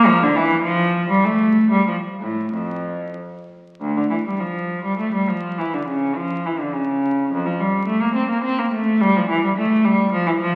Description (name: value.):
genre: classical, baroque-style suite movement for unaccompanied cello.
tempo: 91-110 BPM.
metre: 3/4.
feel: rubato.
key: F major.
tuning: A4 = 440 Hz.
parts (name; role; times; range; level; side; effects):
rich cello; solo; 0.0-10.5 s; D2 to C4; -20 LUFS; equal; none.
room: wet recital hall reverb, RT60 1.5 s.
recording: very old 78 rpm record, vinyl crackle.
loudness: -20 LUFS.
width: mono.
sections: 0.0-3.8 A section; 3.8-10.6 A section.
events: none.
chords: none.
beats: | 0.05 0.64 1.24 | 1.87 2.53 3.16 | 3.79 4.39 4.98 | 5.57 6.16 6.73 | 7.31 7.88 8.44 | 9.01 9.56 10.11.